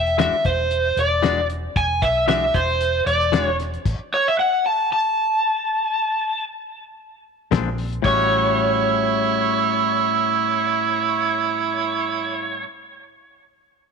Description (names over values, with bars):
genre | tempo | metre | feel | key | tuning
straight-eighth soul blues | 114 BPM | 4/4 | swing 54% on 16ths | A mixolydian | A4 = 439 Hz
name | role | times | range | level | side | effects
overdriven slide guitar | melody | 0.0-12.6 s | C5 to A5 | -20 LUFS | equal | none
vintage muted fingered electric bass | bass | 0.0-4.0, 7.5-12.6 s | E1 to B1 | -26 LUFS | equal | none
cloth-damped thuddy drum kit | drums | 0.1-4.0, 7.5-8.2 s | crash cymbal, hi-hat, kick drum, snare drum | -24 LUFS | left 4 dB | none
direct-recorded clean electric guitar | stabs | 0.2-3.5, 7.5-12.7 s | A2 to F#4 | -26 LUFS | left 12 dB | none
mellow harmonica | second line | 8.1-12.6 s | E4 | -21 LUFS | right 12 dB | none
room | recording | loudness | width
moderate plate reverb, RT60 1.6 s, small room ambience | 1960s-style stereo with parts hard left and right | -18 LUFS | side -5 dB against mid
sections
0.0-8.0 A section; 8.0-12.2 B section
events
stop 3.9-7.5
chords
0.0 E9; 3.9 N.C.; 7.5 Bb9; 8.0 A6